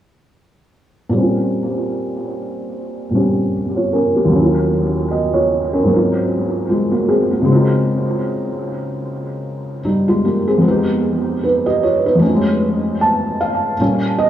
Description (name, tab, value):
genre	hip hop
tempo	76 BPM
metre	4/4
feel	swing 58% on 16ths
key	Bb dorian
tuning	A4 = 439 Hz
part	felt-muted upright piano	solo	1.1-14.3 s	Eb2 to A5	-15 LUFS	equal	low-pass filter, dub echo
room	moderate spring reverb, RT60 1.8 s, small room reverb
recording	echo-heavy mix, studio reverb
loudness	-14 LUFS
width	side -11 dB against mid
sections	1.2-13.8 A section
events	filter sweep on felt piano 1.2-13.8; felt piano fill 12.6-13.8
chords	1.2 Bbm69; 4.3 Ebm7; 5.9 Ab13; 7.5 Dbmaj9; 10.6 Fm7b5; 12.2 F7alt; 13.8 Bbm6